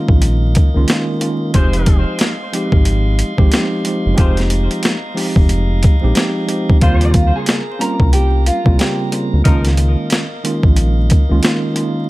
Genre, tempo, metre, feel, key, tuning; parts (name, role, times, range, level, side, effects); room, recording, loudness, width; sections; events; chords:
hip hop, boom-bap hip-hop; 91 BPM; 4/4; swing 62% on 16ths; A4 = 438 Hz
mellow tine electric piano; accompaniment; 0.0-12.1 s; Db3 to G4; -19 LUFS; right 1 dB; medium stereo tremolo, cassette tape, high-pass filter, low-pass filter
tonewheel organ; sustained chords; 0.0-12.1 s; Ab3 to C6; -28 LUFS; equal; overdrive, stopped rotary speaker, high-pass filter, low-pass filter
round analog bass; bass; 0.1-11.4 s; F1 to Eb2; -14 LUFS; equal
boom bap sampler-style drum kit; drums; 0.1-12.0 s; hi-hat, kick drum, snare drum; -14 LUFS; equal
mellow horn section; stabs; 1.5-9.7 s; F3 to C5; -28 LUFS; left 2 dB; high-pass filter, low-pass filter, tape echo
nylon-string guitar; melody; 6.8-9.1 s; F4 to Bb5; -21 LUFS; right 1 dB; high-pass filter, low-pass filter
digital ambience; vinyl crackle; -12 LUFS; side -19 dB against mid
0.0-12.1 A section
0.0 Db69; 1.5 Fm7; 6.8 Eb13; 9.5 Db69